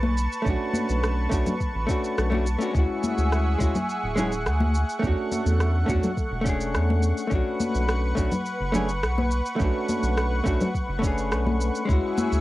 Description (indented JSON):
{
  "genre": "sunset chillout",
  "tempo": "105 BPM",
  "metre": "4/4",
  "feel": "straight",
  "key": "B dorian",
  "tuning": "A4 = 441 Hz",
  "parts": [
    { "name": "lush unison pad", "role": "sustained chords", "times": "0.0-12.4 s", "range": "A3 to C#6", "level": "-30 LUFS", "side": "equal", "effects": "chorus" },
    { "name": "round analog bass", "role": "bass", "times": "0.0-12.4 s", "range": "D1 to E2", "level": "-24 LUFS", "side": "equal", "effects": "none" },
    { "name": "congas", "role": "percussion", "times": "0.0-12.3 s", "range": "none", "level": "-29 LUFS", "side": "left 2 dB", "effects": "none" },
    { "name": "electronic shaker and rim click", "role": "drums", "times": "0.2-12.4 s", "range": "none", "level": "-33 LUFS", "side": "equal", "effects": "cassette tape" },
    { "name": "vintage hollow-body jazz guitar", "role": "accompaniment", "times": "0.4-12.4 s", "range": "G#3 to G#4", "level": "-28 LUFS", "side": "moving between left 4 dB and right 3 dB", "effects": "auto-pan, vintage 12-bit sampler grit, tape echo" },
    { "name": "electronic kick drum", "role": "drums", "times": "0.5-12.0 s", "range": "none", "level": "-27 LUFS", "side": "equal", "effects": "cassette tape" }
  ],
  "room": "light reverb",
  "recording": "home recording on cassette",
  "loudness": "-22 LUFS",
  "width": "side -17 dB against mid",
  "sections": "0.0-11.9 A section",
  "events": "kick drops out 11.3-11.9",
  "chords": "0.0 Bm9; 2.7 Dmaj9#11; 5.0 E13sus4; 7.3 Bm9; 11.9 Dmaj9#11"
}